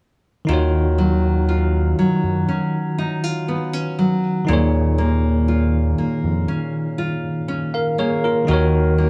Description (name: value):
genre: R&B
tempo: 60 BPM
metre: 4/4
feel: straight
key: Eb minor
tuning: A4 = 440 Hz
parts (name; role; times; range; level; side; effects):
- bell-like tine electric piano; accompaniment; 0.5-9.1 s; Eb3 to F5; -24 LUFS; equal; none
- nylon-string guitar; arpeggios; 0.5-9.1 s; Bb2 to F4; -24 LUFS; equal; analog delay
- round analog bass; bass; 0.5-9.1 s; Eb2 to Gb2; -21 LUFS; equal; none
room: small room ambience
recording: dry, gritty hardware recording, transformer saturation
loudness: -19 LUFS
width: mono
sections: 0.5-9.1 A section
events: none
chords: 0.5 Ebm9; 4.5 Bbm7/Eb; 8.5 Ebm9